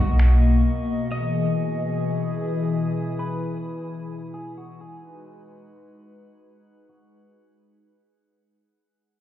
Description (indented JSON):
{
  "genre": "hip hop",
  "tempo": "free time",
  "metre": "none",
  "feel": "none",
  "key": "unclear",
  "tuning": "A4 = 441 Hz",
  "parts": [
    { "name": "electric guitar at the edge of break-up", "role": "melody", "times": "0.0-8.0 s", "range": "F#4 to D#5", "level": "-35 LUFS", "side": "right 3 dB", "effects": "low-pass filter, digital delay" },
    { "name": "hollow soft pad", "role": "sustained chords", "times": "0.0-8.5 s", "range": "B2 to D#5", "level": "-26 LUFS", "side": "left 3 dB", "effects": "chorus, low-pass filter" },
    { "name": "soft 808-style bass", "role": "bass", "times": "0.0-0.6 s", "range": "B1", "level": "-16 LUFS", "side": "equal", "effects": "none" },
    { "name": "drifting glass-harmonics texture", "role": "texture", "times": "0.0-8.5 s", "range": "A#3 to D#6", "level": "-38 LUFS", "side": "left 2 dB", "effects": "chorus, built-in reverb" }
  ],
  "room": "light reverb",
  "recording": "heard muffled through a wall, stone room reverb, EQ",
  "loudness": "-21 LUFS",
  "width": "side -12 dB against mid",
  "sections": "0.0-8.5 A section",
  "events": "fade-out 0.0-8.5; filter sweep 0.0-8.5",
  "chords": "0.0 Bmaj7; 1.1 Emaj7; 4.8 G#m7",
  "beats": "free time"
}